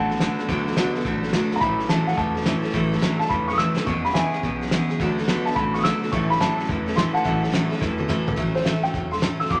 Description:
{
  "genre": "rockabilly",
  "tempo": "213 BPM",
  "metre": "4/4",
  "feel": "swing 65% on 8ths",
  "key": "A major",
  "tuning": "A4 = 436 Hz",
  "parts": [
    { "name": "dark upright piano", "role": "melody", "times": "0.0-9.6 s", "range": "C5 to E6", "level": "-26 LUFS", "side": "equal", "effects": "none" },
    { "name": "picked steel-string acoustic guitar", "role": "accompaniment", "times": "0.0-9.6 s", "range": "A2 to A4", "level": "-28 LUFS", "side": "equal", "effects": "none" },
    { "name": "electric guitar through a small old amp", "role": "riff", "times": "0.0-8.4 s", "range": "E2 to B3", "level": "-29 LUFS", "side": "equal", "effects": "none" },
    { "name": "upright bass", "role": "bass", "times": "0.0-9.6 s", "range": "E1 to D2", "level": "-35 LUFS", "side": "equal", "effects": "none" },
    { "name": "cloth-damped thuddy drum kit", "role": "drums", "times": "0.1-9.6 s", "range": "hi-hat, kick drum, snare drum, toms", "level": "-29 LUFS", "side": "equal", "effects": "none" }
  ],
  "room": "moderate large studio reverb, RT60 1.1 s",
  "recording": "none",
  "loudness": "-23 LUFS",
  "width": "mono",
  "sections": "0.0-8.4 A section; 8.4-9.6 A section",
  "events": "drum fill 3.6, 7.8-8.4",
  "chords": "0.0 D6; 1.6 A6; 3.9 E6; 5.0 D6; 6.1 A6"
}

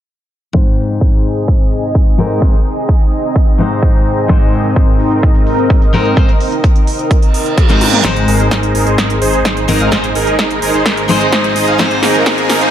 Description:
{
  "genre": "EDM, festival progressive house",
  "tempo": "128 BPM",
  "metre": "4/4",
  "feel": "straight",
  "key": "Ab major",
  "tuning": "A4 = 440 Hz",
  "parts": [
    { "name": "picked steel-string acoustic guitar", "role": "accompaniment", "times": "0.5-12.7 s", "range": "Ab2 to C5", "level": "-16 LUFS", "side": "left 2 dB", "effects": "sidechain pumping, tape echo" },
    { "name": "lush unison pad", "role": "sustained chords", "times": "0.9-12.7 s", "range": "C4 to C6", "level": "-19 LUFS", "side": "equal", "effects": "chorus, phaser, sidechain pumping" },
    { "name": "big-room dance drum kit", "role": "drums", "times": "0.5-12.7 s", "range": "hi-hat, snare drum, toms", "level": "-18 LUFS", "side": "right 1 dB", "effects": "overdrive" },
    { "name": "electronic kick drum", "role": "drums", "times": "0.5-12.4 s", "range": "none", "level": "-11 LUFS", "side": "equal", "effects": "overdrive, high-pass filter on kick" },
    { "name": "reverse cymbal and riser", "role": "sound effects", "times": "7.3-12.7 s", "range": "none", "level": "-21 LUFS", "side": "right 4 dB", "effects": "none" },
    { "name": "dense compressed supersaw", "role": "riff", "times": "8.0-12.7 s", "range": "Eb4 to F5", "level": "-14 LUFS", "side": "right 2 dB", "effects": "sidechain pumping, low-pass filter, tape echo" },
    { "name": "wide detuned saw bass", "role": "bass", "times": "8.0-12.7 s", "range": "Ab1", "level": "-22 LUFS", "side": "equal", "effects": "chorus, sidechain pumping" }
  ],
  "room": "light reverb",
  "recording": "high-pass filter, low-pass filter",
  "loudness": "-10 LUFS",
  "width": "side -11 dB against mid",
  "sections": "0.5-8.0 A section; 8.0-12.7 B section",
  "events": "filter sweep 0.5-8.0, 8.0-12.7; reverse cymbal 7.3-8.0; drum fill 7.6-8.0, 8.0-12.7; build-up 8.0-12.7; filter sweep on supersaw synth 8.0-12.7",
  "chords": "0.5 Ab"
}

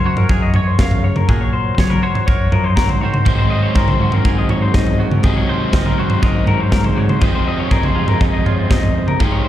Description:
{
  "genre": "math rock and midwest emo",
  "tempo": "121 BPM",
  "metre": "4/4",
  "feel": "straight",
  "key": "unclear",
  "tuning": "A4 = 440 Hz",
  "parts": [
    { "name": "twangy electric guitar", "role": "accompaniment", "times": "0.0-9.5 s", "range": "Ab2 to Db5", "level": "-25 LUFS", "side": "right 6 dB", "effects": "analog chorus, slapback echo" },
    { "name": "electric guitar through a small old amp", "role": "arpeggios", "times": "0.0-9.5 s", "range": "Ab4 to F5", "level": "-23 LUFS", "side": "left 7 dB", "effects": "slapback echo" },
    { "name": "fingered electric bass", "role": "bass", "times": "0.0-9.5 s", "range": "F2 to Gb3", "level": "-19 LUFS", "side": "equal", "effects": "none" },
    { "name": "crisp fusion drum kit", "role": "drums", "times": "0.2-9.3 s", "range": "kick drum, snare drum, toms", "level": "-16 LUFS", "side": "equal", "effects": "none" },
    { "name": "biting overdriven guitar", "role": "riff", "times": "3.3-9.5 s", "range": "F2 to Eb4", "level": "-20 LUFS", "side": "equal", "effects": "slapback echo" }
  ],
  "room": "little or no reverb",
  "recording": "live gig heard through the venue's PA, recital hall reverb",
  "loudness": "-13 LUFS",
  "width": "side -12 dB against mid",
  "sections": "0.0-9.5 A section",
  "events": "none",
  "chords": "0.0 Gbmaj9; 3.0 Ab9; 7.2 Fm7"
}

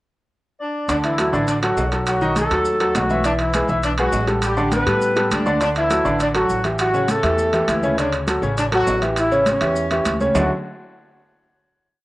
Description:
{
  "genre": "latin, salsa",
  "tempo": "203 BPM",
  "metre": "4/4",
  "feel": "straight",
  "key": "D major",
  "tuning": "A4 = 440 Hz",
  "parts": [
    { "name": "dark horn section", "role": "melody", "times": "0.6-10.5 s", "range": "E3 to D5", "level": "-21 LUFS", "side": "equal", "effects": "cassette tape" },
    { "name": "clear baby grand piano", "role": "accompaniment", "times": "0.9-10.5 s", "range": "C#3 to E5", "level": "-20 LUFS", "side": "equal", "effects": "cassette tape" },
    { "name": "upright bass", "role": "bass", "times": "0.9-10.5 s", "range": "A1 to A2", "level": "-26 LUFS", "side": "equal", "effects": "none" },
    { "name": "congas", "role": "percussion", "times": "0.9-10.4 s", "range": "none", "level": "-29 LUFS", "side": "equal", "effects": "none" },
    { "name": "maracas", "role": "percussion", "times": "0.9-10.4 s", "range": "none", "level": "-38 LUFS", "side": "left 3 dB", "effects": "none" },
    { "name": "timbales", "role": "percussion", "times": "0.9-10.4 s", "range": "none", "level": "-27 LUFS", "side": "right 3 dB", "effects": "none" }
  ],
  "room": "moderate spring reverb, RT60 1.7 s, studio reverb",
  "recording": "home recording on cassette",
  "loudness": "-17 LUFS",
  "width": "side -18 dB against mid",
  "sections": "0.0-0.9 pickup bar; 0.9-10.4 verse; 10.4-11.5 final chord",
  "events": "none",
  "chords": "0.0 N.C.; 0.9 D; 2.1 B7; 3.2 E/B; 4.4 A9sus4; 5.6 D; 6.8 A7; 10.4 Dmaj9"
}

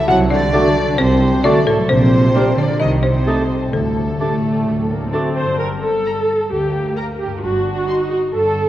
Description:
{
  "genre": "cinematic, playful, whimsical film cue",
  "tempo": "131 BPM",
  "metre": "4/4",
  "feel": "straight",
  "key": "G minor",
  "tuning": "A4 = 440 Hz",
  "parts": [
    { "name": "folk marimba with hard mallets", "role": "melody", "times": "0.0-5.1 s", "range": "A4 to F#5", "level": "-21 LUFS", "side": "left 2 dB", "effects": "none" },
    { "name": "rich chamber violin section", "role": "second line", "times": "0.0-8.7 s", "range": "Bb3 to F#5", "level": "-25 LUFS", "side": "left 1 dB", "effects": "none" },
    { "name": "concert harp", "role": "arpeggios", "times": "0.0-8.7 s", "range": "G2 to Bb5", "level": "-24 LUFS", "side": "left 3 dB", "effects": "none" },
    { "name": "dark French horn section", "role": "sustained chords", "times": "0.1-5.1 s", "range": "A3 to F#4", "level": "-21 LUFS", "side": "equal", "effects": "none" },
    { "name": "dark tuba", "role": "bass", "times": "0.1-5.1 s", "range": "Bb1 to D2", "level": "-24 LUFS", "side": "right 2 dB", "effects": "none" },
    { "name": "warm chamber double bass section", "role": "bass", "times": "0.1-8.7 s", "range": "G1 to D2", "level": "-24 LUFS", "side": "right 2 dB", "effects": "none" },
    { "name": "warm studio cello section", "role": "bass", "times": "0.1-8.7 s", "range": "D2 to F#3", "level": "-22 LUFS", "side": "right 2 dB", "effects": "none" },
    { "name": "rich chamber violin section", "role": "melody", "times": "0.5-8.0 s", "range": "D4 to C6", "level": "-32 LUFS", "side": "left 2 dB", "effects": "none" },
    { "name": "mellow clarinet", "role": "second line", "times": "0.5-5.3 s", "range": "F#4 to G4", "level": "-26 LUFS", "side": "left 1 dB", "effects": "none" },
    { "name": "silver concert flute", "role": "second line", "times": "0.5-5.2 s", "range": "D6 to Eb6", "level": "-34 LUFS", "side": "right 1 dB", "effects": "none" },
    { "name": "warm cor anglais", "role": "second line", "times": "0.5-5.3 s", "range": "Bb4 to A5", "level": "-32 LUFS", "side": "right 2 dB", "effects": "none" },
    { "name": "mellow bassoon", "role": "accompaniment", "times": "0.5-5.3 s", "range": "G3 to A3", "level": "-24 LUFS", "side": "right 2 dB", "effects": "none" },
    { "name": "warm chamber viola section", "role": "accompaniment", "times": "0.5-8.7 s", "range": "F#3 to C5", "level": "-20 LUFS", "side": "right 1 dB", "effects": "none" }
  ],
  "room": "wet scoring stage reverb, RT60 1.9 s",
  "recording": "worn, warbling old tape, cassette tape, warbly pitch drift",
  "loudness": "-14 LUFS",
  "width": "side -13 dB against mid",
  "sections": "0.0-5.6 A section; 5.6-8.7 B section",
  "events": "none",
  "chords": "0.1 D7/C; 1.9 Gm/Bb; 2.8 Am7b5/C; 3.7 Dsus4; 4.7 D; 5.6 Gm; 7.4 D7/G"
}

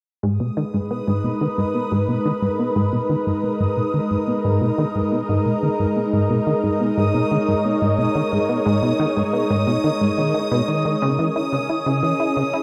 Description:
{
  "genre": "ambient, sequencer-driven space music",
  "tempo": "89 BPM",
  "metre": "4/4",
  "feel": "straight",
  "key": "G# minor",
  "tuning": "A4 = 441 Hz",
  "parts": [
    { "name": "lush unison pad", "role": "sustained chords", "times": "0.2-12.6 s", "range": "G#3 to E5", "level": "-24 LUFS", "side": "equal", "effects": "chorus" },
    { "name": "plucky analog bass", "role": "riff", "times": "0.2-12.6 s", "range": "G#2 to E4", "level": "-24 LUFS", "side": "equal", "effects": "lush chorus, analog delay" },
    { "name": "bubbling stepped-filter texture", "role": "texture", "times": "0.2-12.6 s", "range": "D#6", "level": "-32 LUFS", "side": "equal", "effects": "chorus, built-in reverb" }
  ],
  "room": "wet plate reverb, RT60 2.5 s",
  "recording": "dreamy mix soaked in reverb",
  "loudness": "-20 LUFS",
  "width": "mono",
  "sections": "0.2-12.6 A section",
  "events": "filter sweep on analog synth bass 0.2-12.6",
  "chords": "0.2 G#m; 11.0 C#m"
}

